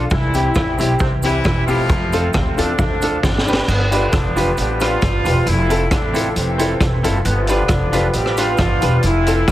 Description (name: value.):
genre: ska.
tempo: 134 BPM.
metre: 4/4.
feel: straight.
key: unclear.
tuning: A4 = 440 Hz.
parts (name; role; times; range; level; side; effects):
semi-hollow electric guitar; accompaniment; 0.0-9.4 s; C4 to B4; -24 LUFS; right 4 dB; spring reverb, dub echo.
clear upright piano; stabs; 0.0-9.4 s; C4 to B4; -23 LUFS; left 4 dB; dub echo.
upright bass; bass; 0.0-9.5 s; E1 to F2; -20 LUFS; equal; none.
mellow horn section; melody; 0.1-9.5 s; C3 to G4; -21 LUFS; equal; dub echo.
street-band drum kit; drums; 0.1-9.5 s; crash cymbal, hi-hat, kick drum, rim click, snare drum; -20 LUFS; equal; none.
cabasa; percussion; 0.1-9.5 s; none; -35 LUFS; right 4 dB; none.
room: light reverb.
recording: heavily compressed radio sound.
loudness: -14 LUFS.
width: side -14 dB against mid.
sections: 0.0-3.7 A section; 3.7-9.5 B section.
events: drum fill 3.2-3.7.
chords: 0.1 C; 1.9 F; 2.8 Dm; 3.2 G; 3.7 G7; 5.5 Fmaj7; 7.3 G7.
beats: | 0.11 0.56 1.01 1.45 | 1.90 2.35 2.79 3.24 | 3.68 4.13 4.58 5.02 | 5.47 5.92 6.36 6.81 | 7.25 7.70 8.15 8.59 | 9.04 9.49.